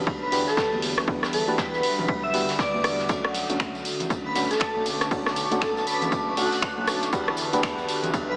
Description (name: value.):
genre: deep house.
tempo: 119 BPM.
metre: 4/4.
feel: swing 60% on 16ths.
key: B minor.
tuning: A4 = 440 Hz.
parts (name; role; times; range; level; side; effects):
mellow FM electric piano; stabs; 0.0-8.4 s; A3 to B4; -32 LUFS; equal; chorus, sidechain pumping, low-pass filter, digital delay.
smooth synth bass; bass; 0.0-8.4 s; F#1 to E2; -38 LUFS; equal; sidechain pumping.
granular cloud pad; texture; 0.0-8.4 s; D3 to A5; -40 LUFS; equal; built-in reverb, sidechain pumping.
electronic kick drum; drums; 0.1-8.3 s; none; -32 LUFS; equal; none.
vintage brush drum kit; drums; 0.1-8.3 s; hi-hat, ride cymbal, snare drum; -37 LUFS; equal; high-pass filter on cymbals, high-pass filter on hats, high-pass filter on snare, high-pass filter on room.
congas; percussion; 0.1-8.3 s; none; -40 LUFS; equal; none.
airy dreamy lead; melody; 0.2-8.4 s; F#4 to E5; -30 LUFS; equal; chorus, phaser, digital delay.
punchy analog drum machine; drums; 0.3-8.3 s; finger snaps, hi-hat, rim click; -31 LUFS; equal; none.
deep dark ambient pad; sustained chords; 4.4-8.4 s; D5 to F#6; -34 LUFS; equal; chorus, built-in reverb, sidechain pumping.
tambourine; percussion; 3.1-8.3 s; none; -40 LUFS; equal; none.
room: moderate echo chamber reverb, RT60 2.2 s.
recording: small speaker sound.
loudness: -25 LUFS.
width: mono.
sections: 0.0-8.4 A section.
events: filter sweep on FM electric piano 0.0-8.4.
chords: 0.0 Em9; 3.1 Bm9; 7.1 Em9.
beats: 0.07 0.57 | 1.08 1.58 2.09 2.59 | 3.10 3.60 4.10 4.61 | 5.11 5.62 6.12 6.62 | 7.13 7.63 8.14.